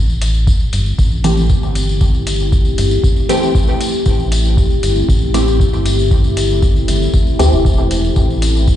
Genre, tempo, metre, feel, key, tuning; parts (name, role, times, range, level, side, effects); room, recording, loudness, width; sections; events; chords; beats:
dub techno; 117 BPM; 4/4; straight; A minor; A4 = 439 Hz
deep dark ambient pad; sustained chords; 0.9-8.8 s; A3 to C5; -19 LUFS; left 2 dB; chorus, built-in reverb, sidechain pumping
round analog bass; bass; 0.0-8.8 s; E1 to D2; -15 LUFS; equal; sidechain pumping
tambourine; percussion; 0.1-8.8 s; -25 LUFS; left 3 dB
electronic hi-hat; drums; 0.2-8.5 s; -28 LUFS; equal
electronic kick drum; drums; 0.5-8.8 s; -14 LUFS; equal
filtered dub chord stab; stabs; 1.2-7.6 s; E3 to G4; -19 LUFS; equal; phaser, sidechain pumping, dub echo
light reverb, digital ambience; played on a big sound system in a bare room, large studio reverb, vinyl crackle, nothing above 10.6 kHz; -12 LUFS; side -12 dB against mid
0.0-8.8 A section
0.0 Am7
0.47 0.98 1.50 | 2.01 2.52 3.04 3.55 | 4.06 4.57 5.09 5.60 | 6.11 6.62 7.14 7.65 | 8.16 8.68